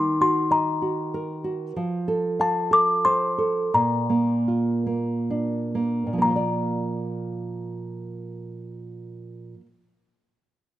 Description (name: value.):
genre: children's music, lullaby.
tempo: 62-96 BPM.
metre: 3/4.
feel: straight.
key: Bb major.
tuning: A4 = 444 Hz.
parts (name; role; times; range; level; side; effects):
music box; melody; 0.0-9.7 s; A5 to D6; -22 LUFS; left 2 dB; none.
nylon-string guitar; accompaniment; 0.0-9.8 s; Bb2 to F5; -25 LUFS; right 2 dB; none.
room: light reverb.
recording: close, detailed microphones.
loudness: -21 LUFS.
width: side -14 dB against mid.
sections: 0.0-6.2 A section; 6.2-10.8 B section.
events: slowing down 1.8-6.2.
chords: 0.0 Ebm; 1.8 F; 3.7 Bb.